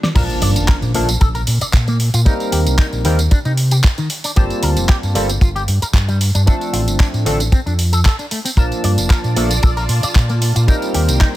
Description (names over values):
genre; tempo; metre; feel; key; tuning
nu-disco, nu disco; 114 BPM; 4/4; swing 54% on 16ths; unclear; A4 = 439 Hz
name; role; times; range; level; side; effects
electric guitar with an envelope filter; riff; 0.0-11.3 s; D3 to D5; -25 LUFS; left 2 dB; wide subtle chorus, dub echo
pop drum kit; drums; 0.0-11.3 s; crash cymbal, handclaps, hi-hat, snare drum, tambourine; -22 LUFS; right 1 dB; studio reverb
barky tine electric piano; accompaniment; 0.1-11.4 s; F3 to A5; -22 LUFS; equal; overdrive, analog chorus, sidechain pumping, dub echo
overdriven fingered electric bass; bass; 0.2-11.2 s; F1 to C3; -17 LUFS; equal; sidechain pumping
kick drum; drums; 0.2-11.3 s; none; -12 LUFS; equal; studio reverb
impact; sound effects; 0.2-2.3 s; none; -26 LUFS; equal; none
lush unison pad; sustained chords; 8.6-11.4 s; Eb3 to A5; -26 LUFS; right 2 dB; chorus, phaser, sidechain pumping
room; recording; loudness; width
little or no reverb; none; -13 LUFS; side -15 dB against mid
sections
0.2-11.4 A section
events
break 0.0; drum fill 0.0; drop 0.2-11.4; impact 0.2-2.3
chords
0.2 Bbmaj7; 2.3 Eb6; 4.1 Gm11; 6.5 Dm7; 8.6 Bbmaj7; 10.7 Eb6